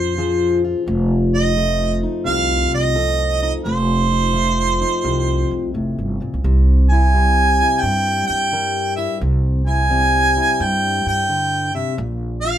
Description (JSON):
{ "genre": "acoustic country blues, solo or duo", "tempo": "86 BPM", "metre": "4/4", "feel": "swing 67% on 8ths", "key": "F mixolydian", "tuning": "A4 = 440 Hz", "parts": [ { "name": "warm harmonica", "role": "melody", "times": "0.0-12.6 s", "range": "C5 to Ab5", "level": "-18 LUFS", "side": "right 2 dB", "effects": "none" }, { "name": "fingerpicked plugged-in steel-string acoustic guitar", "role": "accompaniment", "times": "0.0-12.6 s", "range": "F2 to Bb4", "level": "-23 LUFS", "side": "left 4 dB", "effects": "none" }, { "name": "upright bass", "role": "bass", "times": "0.0-12.6 s", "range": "F1 to G2", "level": "-19 LUFS", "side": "right 1 dB", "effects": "none" } ], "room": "light reverb", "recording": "minimal, uncompressed stereo recording", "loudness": "-15 LUFS", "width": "side -10 dB against mid", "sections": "0.0-12.6 A section", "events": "none", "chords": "0.0 Bbm7; 0.9 F7; 6.4 C7; 12.0 Bb5", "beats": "0.18 | 0.88 1.57 2.27 2.96 | 3.65 4.35 5.04 5.74 | 6.43 7.12 7.82 8.51 | 9.20 9.89 10.59 11.28 | 11.97" }